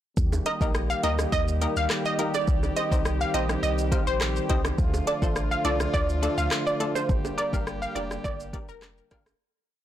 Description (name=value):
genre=dancehall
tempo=104 BPM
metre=4/4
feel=straight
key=unclear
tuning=A4 = 439 Hz
part: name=clear brass ensemble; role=sustained chords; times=0.2-9.4 s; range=D3 to G4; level=-32 LUFS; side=equal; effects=sidechain pumping
part: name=punchy sub bass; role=bass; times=0.2-9.3 s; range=F1 to Eb2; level=-29 LUFS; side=equal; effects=none
part: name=afro-pop drum kit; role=drums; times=0.2-9.4 s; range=handclaps, hi-hat, kick drum, rim click, shaker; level=-28 LUFS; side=equal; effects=none
part: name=bongos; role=percussion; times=0.3-9.4 s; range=none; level=-38 LUFS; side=right 4 dB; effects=none
part: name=analog pluck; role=melody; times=0.5-8.8 s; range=Bb4 to F5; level=-29 LUFS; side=right 1 dB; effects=chorus, ping-pong delay
part: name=wavetable chord stab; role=accompaniment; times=0.5-9.2 s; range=A3 to F5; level=-32 LUFS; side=left 3 dB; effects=none
room=light reverb, digital ambience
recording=blown-out, overdriven recording, overdrive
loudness=-23 LUFS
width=side -11 dB against mid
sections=0.2-9.4 chorus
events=fade-out 7.1-9.4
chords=0.2 Eb; 2.5 Cm; 4.8 Dm; 7.1 Gm